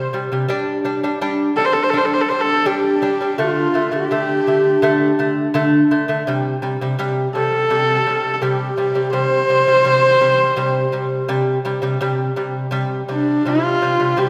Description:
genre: mongolian traditional, Mongolian folk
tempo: 83 BPM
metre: 4/4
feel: straight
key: C zhi mode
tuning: A4 = 440 Hz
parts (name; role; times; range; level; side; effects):
- rich horsehead fiddle; melody; 0.0-14.3 s; D4 to C5; -19 LUFS; equal; none
- lute; arpeggios; 0.0-14.3 s; C3 to D4; -21 LUFS; equal; none
- mellow xiao; second line; 2.4-14.3 s; D4 to C5; -25 LUFS; equal; none
room: wet scoring stage reverb, RT60 1.8 s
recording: none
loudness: -18 LUFS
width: mono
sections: 0.5-12.0 A section; 12.0-14.3 B section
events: none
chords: 0.5 G5; 3.4 D5; 6.2 C5

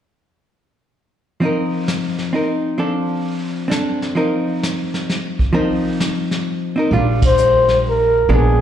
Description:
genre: jazz, small-group swing and bop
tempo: 131 BPM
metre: 3/4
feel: swing 66% on 8ths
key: unclear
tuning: A4 = 440 Hz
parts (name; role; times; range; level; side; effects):
- archtop guitar, miked and amplified; accompaniment; 1.4-8.6 s; F3 to Bb4; -19 LUFS; equal; slapback echo
- vintage brush drum kit; drums; 1.4-8.6 s; brushed snare drum, hi-hat, kick drum, ride cymbal, snare drum; -23 LUFS; equal; none
- upright bass; bass; 6.9-8.6 s; Bb1; -17 LUFS; right 1 dB; none
- breathy flugelhorn; melody; 7.3-8.6 s; Ab4 to C5; -13 LUFS; left 1 dB; slapback echo
room: light reverb, studio reverb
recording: live gig heard through the venue's PA, club reverb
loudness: -16 LUFS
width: side -10 dB against mid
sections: 1.4-6.9 A section; 6.9-8.6 B section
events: band accent 7.1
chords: 1.4 F7sus4; 2.8 F6; 4.2 F7sus4; 6.9 Bb6

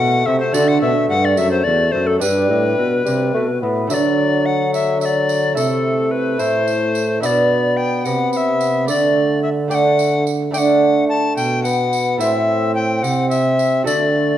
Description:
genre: classical, renaissance-style consort dance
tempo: 72 BPM (dotted quarters)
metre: 6/8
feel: straight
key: unclear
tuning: A4 = 439 Hz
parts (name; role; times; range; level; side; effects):
- bright tenor recorder; melody; 0.0-14.4 s; A4 to A5; -19 LUFS; left 3 dB; none
- lute; accompaniment; 0.0-14.4 s; E2 to D5; -21 LUFS; right 4 dB; none
- warm bassoon; accompaniment; 0.0-14.4 s; F#3 to C4; -23 LUFS; left 1 dB; none
- warm trombone; bass; 0.0-14.4 s; E2 to D3; -21 LUFS; right 1 dB; none
- tambourine; percussion; 0.5-14.1 s; none; -32 LUFS; right 9 dB; none
room: moderate recital hall reverb, RT60 1.6 s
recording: dark, warm production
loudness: -14 LUFS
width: side -11 dB against mid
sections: 0.0-3.9 A section; 3.9-14.4 B section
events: none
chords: 0.0 E5; 0.5 D; 2.2 G; 3.9 D; 5.6 Am/C; 7.2 Bm; 8.9 D; 12.2 Am; 13.9 D

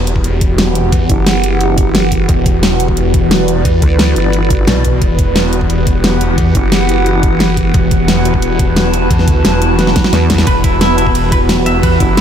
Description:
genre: dark technical drum and bass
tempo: 176 BPM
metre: 4/4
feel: straight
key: E minor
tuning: A4 = 440 Hz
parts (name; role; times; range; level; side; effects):
- swarming drone; sustained chords; 0.0-12.2 s; E3 to B4; -16 LUFS; right 1 dB; built-in reverb, sidechain pumping
- snarling distorted saw bass; bass; 0.0-12.0 s; E1 to E2; -15 LUFS; equal; tube saturation
- warbly tape-like pad; texture; 0.1-12.2 s; E4 to A5; -20 LUFS; right 1 dB; chorus, built-in reverb, sidechain pumping
- dubstep drum kit; drums; 0.1-12.2 s; hi-hat, ride cymbal, snare drum; -16 LUFS; equal; none
- electronic kick drum; drums; 0.2-12.1 s; none; -14 LUFS; equal; none
- vowel-sweep wobble bass; bass; 1.1-7.7, 10.1-12.2 s; F#1 to E2; -14 LUFS; equal; chorus
- semi-hollow electric guitar; arpeggios; 10.5-12.2 s; E4 to E5; -16 LUFS; right 1 dB; sidechain pumping, tape echo
room: light reverb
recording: none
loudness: -9 LUFS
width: side -9 dB against mid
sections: 0.0-12.2 A section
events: drum fill 9.8-10.5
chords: 0.0 Emadd9

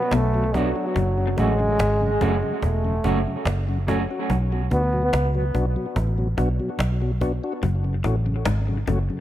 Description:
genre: dub reggae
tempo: 72 BPM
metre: 4/4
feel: straight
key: B dorian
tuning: A4 = 440 Hz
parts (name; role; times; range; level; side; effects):
- warm trombone; melody; 0.0-5.1 s; F#3 to B3; -24 LUFS; equal; tape echo
- mellow tonewheel organ; accompaniment; 0.0-9.2 s; F#2 to F#4; -29 LUFS; left 2 dB; overdrive, chorus vibrato, slow rotary speaker, tape echo
- electric guitar at the edge of break-up; riff; 0.1-1.2, 7.6-9.0 s; F#2 to B2; -31 LUFS; left 6 dB; warbly pitch drift, tape echo
- vintage muted fingered electric bass; bass; 0.1-9.1 s; E1 to D2; -23 LUFS; equal; none
- cajon; drums; 0.1-9.2 s; none; -29 LUFS; equal; none
- mellow electric guitar; accompaniment; 0.5-4.0 s; F#3 to F#4; -28 LUFS; right 4 dB; spring reverb, tape echo
room: light reverb, studio ambience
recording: echo-heavy mix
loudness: -20 LUFS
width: side -13 dB against mid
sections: 0.0-9.2 A section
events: none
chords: 0.0 Bm; 1.0 F#m; 4.3 Bm; 7.6 F#m

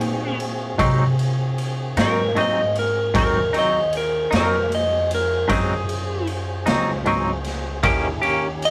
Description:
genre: slow blues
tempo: 51 BPM (dotted quarters)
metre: 12/8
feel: straight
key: unclear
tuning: A4 = 440 Hz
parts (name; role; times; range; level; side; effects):
- clean lap steel guitar; melody; 0.0-8.7 s; Eb4 to Eb5; -24 LUFS; equal; none
- tonewheel organ; sustained chords; 0.0-8.7 s; C4 to C5; -34 LUFS; equal; chorus vibrato, stopped rotary speaker
- upright bass; bass; 0.0-8.7 s; Db2 to C3; -28 LUFS; equal; none
- raw garage drum kit; drums; 0.0-8.7 s; kick drum, ride cymbal, snare drum; -29 LUFS; equal; none
- semi-hollow electric guitar; accompaniment; 0.8-8.5 s; Ab2 to G4; -22 LUFS; equal; tremolo
room: moderate booth ambience, RT60 0.2 s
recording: rough rehearsal-room recording, warm saturation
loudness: -21 LUFS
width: mono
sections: 0.0-8.7 A section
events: electric slide guitar solo 0.0-8.7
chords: 0.0 Ab7; 7.8 Eb7

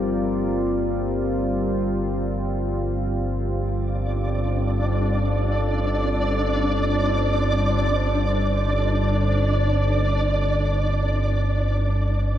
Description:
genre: dark ambient drone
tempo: free time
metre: none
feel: none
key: G minor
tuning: A4 = 440 Hz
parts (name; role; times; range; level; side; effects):
- deep dark ambient pad; sustained chords; 0.0-12.4 s; G3 to D5; -26 LUFS; equal; chorus, built-in reverb
- deep rumbling drone; drone; 0.0-12.4 s; G1 to G2; -23 LUFS; equal; built-in reverb, lush chorus
- flickering grainy texture; texture; 4.1-12.4 s; D4 to D5; -24 LUFS; equal; built-in reverb
room: wet cathedral reverb, RT60 6.3 s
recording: none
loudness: -20 LUFS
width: side -11 dB against mid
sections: 0.0-12.4 A section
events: fade-in on synth drone 0.0-12.4; fade-out on ambient pad 0.0-12.4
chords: 0.0 Gm

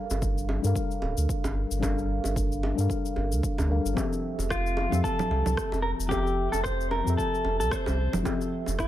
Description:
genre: sunset chillout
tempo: 112 BPM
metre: 4/4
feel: swing 57% on 16ths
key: F major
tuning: A4 = 439 Hz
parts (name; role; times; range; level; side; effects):
- mellow FM electric piano; accompaniment; 0.0-8.9 s; F3 to F5; -32 LUFS; moving between left 6 dB and right 4 dB; chorus, auto-pan, digital delay
- warm sub bass; bass; 0.1-8.9 s; D1 to G2; -28 LUFS; equal; none
- electronic shaker, rim click and congas; drums; 0.1-8.9 s; none; -35 LUFS; right 2 dB; small room ambience
- bongos; percussion; 0.1-8.8 s; none; -37 LUFS; right 2 dB; none
- electronic kick drum; drums; 0.2-8.9 s; none; -33 LUFS; equal; small room ambience
- clean electric guitar; melody; 4.5-8.9 s; F4 to C5; -29 LUFS; left 1 dB; spring reverb, digital delay
room: light reverb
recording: none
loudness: -25 LUFS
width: side -13 dB against mid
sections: 0.0-8.9 A section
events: none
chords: 0.0 Gm9; 4.0 Fmaj9

